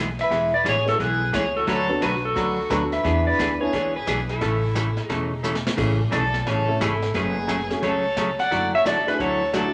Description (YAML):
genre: country, western swing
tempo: 176 BPM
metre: 4/4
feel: swing 64% on 8ths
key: A major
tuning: A4 = 440 Hz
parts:
  - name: archtop guitar, miked and amplified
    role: accompaniment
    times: 0.0-9.7 s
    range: C#3 to B4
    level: -29 LUFS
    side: equal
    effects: none
  - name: upright bass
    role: bass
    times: 0.0-9.7 s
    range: E1 to E2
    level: -30 LUFS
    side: equal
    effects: none
  - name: clean lap steel guitar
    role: melody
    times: 0.2-9.7 s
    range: A4 to F#5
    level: -26 LUFS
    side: equal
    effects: none
  - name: rich fiddle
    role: second line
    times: 0.2-9.7 s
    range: E4 to D5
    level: -32 LUFS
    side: equal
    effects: none
  - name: vintage brush drum kit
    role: drums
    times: 0.2-9.7 s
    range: brushed snare drum, crash cymbal, hi-hat, kick drum, snare drum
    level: -34 LUFS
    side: equal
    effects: none
  - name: warm upright piano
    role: accompaniment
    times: 0.8-3.7, 5.8-9.7 s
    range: G#3 to A4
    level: -31 LUFS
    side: equal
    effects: none
room: wet large studio reverb, RT60 1.2 s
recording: none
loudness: -23 LUFS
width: mono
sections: 0.0-5.8 A section; 5.8-9.7 A section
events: drum fill 5.4-5.8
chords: 0.0 E; 1.7 Bm7; 3.0 E7; 4.4 A; 5.8 Amaj7; 7.1 F#madd9; 8.5 Dadd9/F#